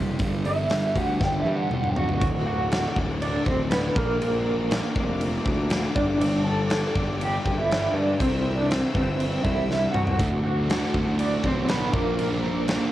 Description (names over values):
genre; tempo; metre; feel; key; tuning
quiet-loud alternative rock; 120 BPM; 4/4; straight; D mixolydian; A4 = 440 Hz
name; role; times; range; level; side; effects
fingerpicked steel-string acoustic guitar; arpeggios; 0.0-2.2 s; G2 to C5; -36 LUFS; left 3 dB; none
thick fuzz guitar; riff; 0.0-12.9 s; D2 to C5; -33 LUFS; left 6 dB; distortion, cassette tape
thick fuzz guitar; riff; 0.0-2.2, 10.2-12.9 s; D2 to Bb4; -30 LUFS; right 5 dB; distortion, cassette tape
fuzz picked electric bass; bass; 0.0-12.8 s; D1 to G2; -28 LUFS; equal; overdrive
huge arena drum kit; drums; 0.2-12.8 s; crash cymbal, hi-hat, kick drum, snare drum, toms; -27 LUFS; equal; none
electric guitar through a small old amp; melody; 0.5-12.9 s; Bb3 to A5; -27 LUFS; right 1 dB; tremolo, cassette tape
bright studio string section; sustained chords; 2.2-12.9 s; A4 to E6; -37 LUFS; left 2 dB; cassette tape
room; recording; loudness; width
small room ambience; home recording on cassette; -22 LUFS; side -14 dB against mid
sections
0.0-2.2 A section; 2.2-12.9 B section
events
clean electric guitar solo 0.0-2.2; drum fill 1.2-2.2, 9.7-10.2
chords
0.2 G; 2.2 D; 4.0 Bb; 6.0 Gsus2; 8.2 C; 10.2 D; 11.9 Bb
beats
| 0.21 0.71 1.21 1.71 | 2.21 2.71 3.21 3.71 | 4.21 4.71 5.21 5.71 | 6.21 6.71 7.21 7.70 | 8.20 8.70 9.20 9.70 | 10.19 10.69 11.19 11.69 | 12.19 12.68